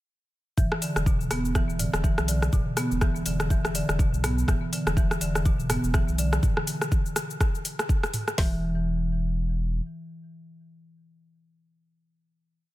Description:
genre	afro house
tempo	123 BPM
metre	4/4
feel	swing 58% on 16ths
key	unclear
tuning	A4 = 440 Hz
part	marimba with medium mallets	arpeggios	0.6-8.6 s	B2 to B3	-30 LUFS	equal	sidechain pumping, ping-pong delay
part	warm sub bass	bass	0.6-9.8 s	E1 to B1	-29 LUFS	equal	sidechain pumping
part	afro-pop drum kit	drums	0.6-8.5 s	hi-hat, kick drum, snare drum	-24 LUFS	equal	none
part	afro-pop drum kit	drums	0.6-8.4 s	hi-hat, rim click, shaker, toms	-29 LUFS	equal	none
room	digital ambience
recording	none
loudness	-23 LUFS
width	side -16 dB against mid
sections	0.6-8.4 drop; 8.4-12.3 final note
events	drop 0.6-8.4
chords	0.6 E5; 8.4 N.C.

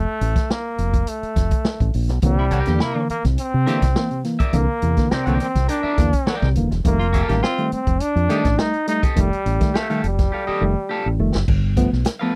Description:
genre	funk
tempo	104 BPM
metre	4/4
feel	straight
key	unclear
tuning	A4 = 439 Hz
part	brilliant trombone	melody	0.0-11.2 s	G3 to Eb4	-26 LUFS	equal	none
part	fingered electric bass	bass	0.0-12.0 s	Eb1 to C3	-23 LUFS	equal	none
part	vintage drum kit	drums	0.2-12.2 s	crash cymbal, hi-hat, kick drum, snare drum	-24 LUFS	equal	none
part	barky tine electric piano	stabs	2.2-12.3 s	G2 to B3	-26 LUFS	equal	overdrive
part	breathy tenor saxophone	second line	2.4-8.4 s	E4 to G4	-30 LUFS	equal	none
part	electric guitar at the edge of break-up	accompaniment	2.5-12.4 s	G4 to G5	-29 LUFS	equal	phaser
room	little or no reverb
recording	dry, close 1970s-style studio recording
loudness	-20 LUFS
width	mono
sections	0.0-11.5 A section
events	drum fill 10.3-11.5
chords	0.0 F; 2.2 C9; 6.8 F9; 11.5 G9

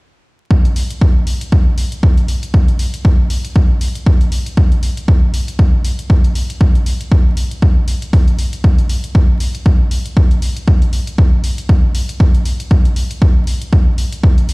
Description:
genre	deep house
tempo	118 BPM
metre	4/4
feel	swing 57% on 16ths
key	none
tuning	none
part	electronic kick drum	drums	0.5-14.3 s	none	-11 LUFS	equal	overdrive
part	electronic hi-hat	drums	0.7-14.5 s	none	-29 LUFS	left 2 dB	overdrive
room	digital ambience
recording	played on a big sound system in a bare room, stone room reverb, vinyl crackle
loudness	-11 LUFS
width	side -26 dB against mid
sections	0.5-14.5 A section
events	none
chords	none

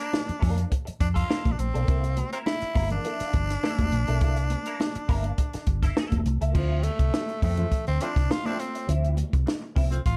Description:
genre	funk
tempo	103 BPM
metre	4/4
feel	straight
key	D minor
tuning	A4 = 442 Hz
part	breathy tenor saxophone	melody	0.0-10.2 s	F3 to F4	-34 LUFS	equal	none
part	clean electric guitar	accompaniment	0.0-10.0 s	F3 to Bb4	-39 LUFS	equal	wah, ensemble chorus
part	compact cocktail drum kit	drums	0.1-10.2 s	crash cymbal, hi-hat, kick drum, snare drum	-29 LUFS	equal	none
part	congas	percussion	0.1-9.9 s	none	-38 LUFS	equal	none
part	hollow-body short-scale fingered electric bass	bass	0.3-10.2 s	E1 to F2	-28 LUFS	equal	none
part	dark horn section	second line	7.6-10.0 s	A3 to C5	-39 LUFS	equal	none
room	light reverb, small room ambience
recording	dark, warm production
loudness	-26 LUFS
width	mono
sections	0.0-6.6 A section; 6.6-10.2 B section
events	tenor saxophone solo 6.6-10.2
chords	0.0 Bbmaj7; 1.9 C13; 6.6 Dm9

